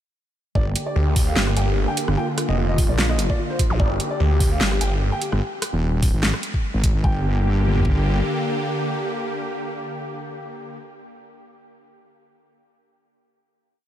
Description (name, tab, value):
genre	heavy wobble dubstep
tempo	148 BPM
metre	4/4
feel	swing 54% on 16ths, half-time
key	G minor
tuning	A4 = 440 Hz
part	warm baby grand piano	melody	0.6-10.8 s	F4 to G5	-31 LUFS	equal	diffuse ambient delay
part	supersaw chords	sustained chords	0.6-10.8 s	D3 to G4	-27 LUFS	equal	sidechain pumping, low-pass filter
part	wobble bass	bass	0.6-8.2 s	Eb1 to Bb1	-20 LUFS	equal	chorus, overdrive
part	dubstep drum kit	drums	0.6-8.0 s	kick drum, toms	-20 LUFS	equal	studio reverb
part	dubstep drum kit	drums	0.8-6.9 s	hi-hat, rim click, snare drum	-26 LUFS	equal	studio reverb
part	snarling distorted saw bass	bass	1.0-5.1 s	F1 to D2	-20 LUFS	equal	distortion, overdrive
part	zap	sound effects	3.7-3.8 s	none	-33 LUFS	equal	none
room	light reverb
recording	none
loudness	-19 LUFS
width	side -11 dB against mid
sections	0.6-7.0 drop; 7.0-10.3 final chord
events	drop 0.6-7.0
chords	0.6 Gm; 2.2 Bb; 3.8 Gm; 5.4 Ab5; 7.0 Gm